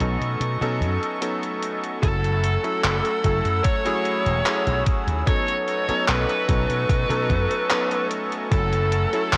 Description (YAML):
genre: vaporwave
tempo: 74 BPM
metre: 4/4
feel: straight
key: F# dorian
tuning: A4 = 439 Hz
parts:
  - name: bright electric grand piano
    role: accompaniment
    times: 0.0-9.4 s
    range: F#3 to A4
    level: -29 LUFS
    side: equal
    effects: subtle chorus, analog delay
  - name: rich chamber string section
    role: sustained chords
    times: 0.0-9.4 s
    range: A3 to E6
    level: -34 LUFS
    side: equal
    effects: none
  - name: slap bass with an envelope filter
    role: bass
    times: 0.0-9.4 s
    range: E1 to B2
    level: -26 LUFS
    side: equal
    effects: none
  - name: detuned 8-bit digital drum machine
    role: drums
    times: 0.0-9.4 s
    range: handclaps, hi-hat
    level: -29 LUFS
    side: equal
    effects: vintage 12-bit sampler grit, gated reverb
  - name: bluesy overdriven lead guitar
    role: melody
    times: 2.0-9.4 s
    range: A4 to C#5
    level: -27 LUFS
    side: equal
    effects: distortion, tape echo
  - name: electronic kick drum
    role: drums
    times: 2.0-8.7 s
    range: none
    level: -26 LUFS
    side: equal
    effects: vintage 12-bit sampler grit
room: light reverb, digital ambience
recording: cassette tape, low-pass filter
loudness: -22 LUFS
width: mono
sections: 0.0-2.0 A section; 2.0-9.4 B section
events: none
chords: 0.0 B9; 2.0 F#m7; 5.3 B9; 8.5 F#m7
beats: 0.41 1.22 | 2.03 2.84 3.65 4.46 | 5.27 6.08 6.89 7.70 | 8.51 9.32